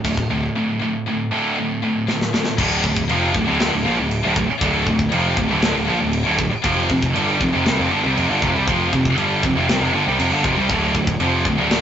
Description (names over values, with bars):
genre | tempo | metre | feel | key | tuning
heavy metal | 118 BPM | 4/4 | straight | D minor | A4 = 440 Hz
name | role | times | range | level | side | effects
heavy high-gain guitar | riff | 0.0-11.8 s | D2 to G3 | -24 LUFS | left 8 dB | distortion
heavy high-gain guitar | riff | 0.0-11.8 s | D2 to G3 | -20 LUFS | right 3 dB | distortion
fuzz picked electric bass | bass | 0.0-11.8 s | D1 to C2 | -23 LUFS | left 1 dB | overdrive
tight metal drum kit | drums | 0.0-11.8 s | china cymbal, crash cymbal, kick drum, snare drum | -23 LUFS | left 1 dB | none
room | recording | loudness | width
light reverb | rough rehearsal-room recording, nothing above 7.8 kHz | -16 LUFS | side -9 dB against mid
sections
0.0-2.6 A section; 2.6-11.8 B section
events
drum fill 2.1-2.6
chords
0.0 D5; 2.6 Dm; 6.6 F5; 10.7 Dm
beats
0.04 | 0.55 1.06 1.57 2.08 | 2.58 3.09 3.60 4.11 | 4.62 5.12 5.63 6.14 | 6.65 7.15 7.66 8.17 | 8.67 9.18 9.69 10.19 | 10.70 11.20 11.71